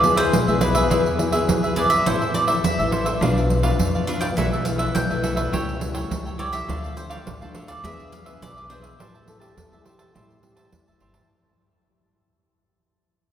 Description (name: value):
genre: samba and choro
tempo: 104 BPM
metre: 4/4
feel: straight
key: A minor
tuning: A4 = 440 Hz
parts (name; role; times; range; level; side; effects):
- bowl-back mandolin; melody; 0.0-10.7 s; B4 to G5; -25 LUFS; right 2 dB; none
- cavaquinho; accompaniment; 0.0-11.3 s; D4 to A5; -27 LUFS; right 1 dB; none
- nylon-string guitar; accompaniment; 0.0-11.3 s; A2 to G#4; -26 LUFS; left 4 dB; none
- upright bass; bass; 0.0-11.3 s; E1 to F2; -26 LUFS; equal; none
- pandeiro; percussion; 0.0-11.3 s; none; -25 LUFS; right 2 dB; none
- breathy trombone; second line; 9.3-11.3 s; E4 to A4; -58 LUFS; left 1 dB; none
room: wet cathedral reverb, RT60 6.3 s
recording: recorded in a church or concert hall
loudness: -19 LUFS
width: side -10 dB against mid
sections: 0.0-11.3 A section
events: fade-out 0.0-11.3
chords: 0.0 E; 2.1 Am; 3.2 Bdim; 4.4 Esus4/B; 5.5 A7/C#; 6.7 Dm; 7.8 E7; 9.0 Am7